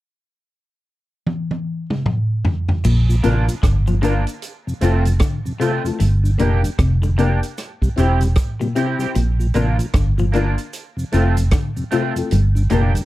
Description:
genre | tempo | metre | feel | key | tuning
roots reggae | 76 BPM | 4/4 | swing 61% on 16ths | unclear | A4 = 440 Hz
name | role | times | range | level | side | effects
vintage drum kit | drums | 1.3-13.1 s | crash cymbal, hi-hat, kick drum, rim click, toms | -21 LUFS | equal | none
electric guitar at the edge of break-up | arpeggios | 2.8-12.9 s | G2 to F3 | -23 LUFS | left 4 dB | none
cabasa | percussion | 2.8-13.1 s | none | -41 LUFS | right 5 dB | none
vintage muted fingered electric bass | bass | 2.9-12.9 s | E1 to Bb1 | -16 LUFS | right 1 dB | none
mellow tonewheel organ | accompaniment | 3.1-13.0 s | F2 to G4 | -25 LUFS | left 1 dB | slow rotary speaker
electric guitar at the edge of break-up | accompaniment | 3.2-12.9 s | A3 to G4 | -27 LUFS | right 5 dB | analog chorus, dub echo
dark upright piano | stabs | 3.2-13.0 s | A3 to C5 | -23 LUFS | left 5 dB | none
room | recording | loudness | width
little or no reverb | dark, warm production | -16 LUFS | side -16 dB against mid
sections
0.0-2.8 A section; 2.8-9.2 B section; 9.2-13.1 C section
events
drum fill 1.3-2.8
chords
0.0 N.C.; 2.8 Bb; 4.4 F; 6.0 Gm; 7.6 C; 9.2 Bb; 10.7 F; 12.3 Gm

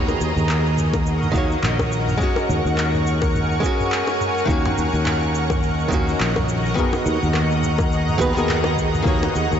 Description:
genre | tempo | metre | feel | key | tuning
sunset chillout | 105 BPM | 4/4 | swing 58% on 16ths | Eb minor | A4 = 440 Hz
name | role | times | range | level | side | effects
archtop guitar, miked and amplified | accompaniment | 0.0-9.6 s | Eb3 to Db5 | -24 LUFS | equal | auto-pan, tape echo
shimmering ambient pad | sustained chords | 0.0-9.6 s | Ab4 to Db6 | -24 LUFS | equal | chorus, built-in reverb
sustaining fretless electric bass | bass | 0.0-9.6 s | Bb1 to Eb2 | -22 LUFS | equal | lush chorus
deep house drum kit | drums | 0.1-9.6 s | cabasa, handclaps, toms | -28 LUFS | equal | none
bongos | percussion | 0.1-9.3 s | none | -31 LUFS | left 4 dB | none
electronic kick drum | drums | 0.9-9.2 s | none | -24 LUFS | equal | none
room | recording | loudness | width
moderate huge ambient reverb, RT60 7.8 s | dreamy mix soaked in reverb, nothing above 7.8 kHz | -18 LUFS | side -8 dB against mid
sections
0.0-9.6 A section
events
none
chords
0.0 Ebm7; 2.2 Ab9sus4/Eb; 4.5 Ebm7; 6.8 Abm9/Eb; 9.1 Ebm7

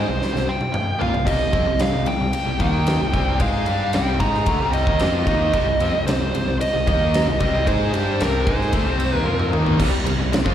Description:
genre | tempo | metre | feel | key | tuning
hard rock | 113 BPM | 4/4 | straight | C minor | A4 = 440 Hz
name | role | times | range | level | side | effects
dark smooth lead guitar | melody | 0.0-9.5 s | Bb4 to Bb5 | -24 LUFS | right 2 dB | overdrive, slapback echo
cranked stack guitar | riff | 0.0-10.5 s | C3 to Ab4 | -27 LUFS | left 9 dB | overdrive, slapback echo
overdriven electric guitar | riff | 0.0-10.5 s | C3 to Ab4 | -29 LUFS | right 9 dB | slapback echo
tight distorted guitar | riff | 0.0-10.5 s | C3 to Ab4 | -28 LUFS | right 1 dB | distortion, slapback echo
picked electric bass | bass | 0.0-10.5 s | C2 to Bb2 | -23 LUFS | equal | none
huge arena drum kit | drums | 0.2-10.5 s | crash cymbal, kick drum, ride cymbal, snare drum, toms | -24 LUFS | equal | none
room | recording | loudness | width
light reverb, small room ambience | live gig heard through the venue's PA, recital hall reverb | -18 LUFS | side -10 dB against mid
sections
0.0-9.8 A section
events
drum fill 0.2-1.3, 9.3-9.8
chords
0.0 Cm; 9.8 C5

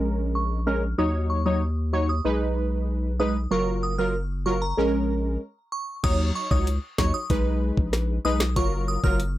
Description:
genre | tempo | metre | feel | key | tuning
dancehall | 95 BPM | 4/4 | straight | Eb minor | A4 = 439 Hz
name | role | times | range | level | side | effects
synth brass stab | accompaniment | 0.0-9.2 s | Gb3 to Db5 | -26 LUFS | right 1 dB | chorus, sidechain pumping, low-pass filter
saturated sub bass | bass | 0.0-9.4 s | Gb1 to Eb2 | -26 LUFS | equal | none
glassy synth bell | melody | 0.4-9.2 s | Bb5 to F6 | -31 LUFS | equal | chorus, low-pass filter, ping-pong delay
island pop drum kit | drums | 6.0-9.3 s | crash cymbal, finger snaps, hi-hat, kick drum, rim click, snare drum | -25 LUFS | equal | none
room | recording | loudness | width
little or no reverb | none | -22 LUFS | side -14 dB against mid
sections
0.0-6.0 A section; 6.0-9.4 B section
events
filter sweep 0.0-6.0; stop 5.4-6.0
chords
0.0 Bbm7; 1.0 Ebm7; 2.2 B6; 3.5 Gbmaj7; 4.8 Bbm7; 6.0 Ebm7; 7.3 B6; 8.6 Gbmaj7

